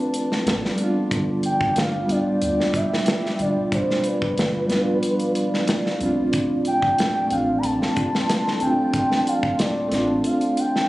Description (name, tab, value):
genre	trip hop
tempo	92 BPM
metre	4/4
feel	straight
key	D dorian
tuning	A4 = 440 Hz
part	pure breathy sine lead	melody	0.0-10.9 s	B4 to B5	-24 LUFS	equal	chorus, tape echo
part	mellow reed electric piano	accompaniment	0.0-10.9 s	B2 to F4	-23 LUFS	equal	tremolo
part	deep dark ambient pad	sustained chords	0.0-10.9 s	F4 to C6	-30 LUFS	equal	chorus, built-in reverb
part	modern studio drum kit	drums	0.1-10.9 s	hi-hat, kick drum, snare drum	-25 LUFS	equal	none
part	soft 808-style bass	bass	0.5-10.2 s	D1 to D2	-33 LUFS	equal	none
room	light reverb, small room ambience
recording	recorded on a phone in the room, club reverb, nothing above 10.8 kHz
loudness	-19 LUFS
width	side -17 dB against mid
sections	0.0-10.9 A section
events	none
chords	0.0 Dm7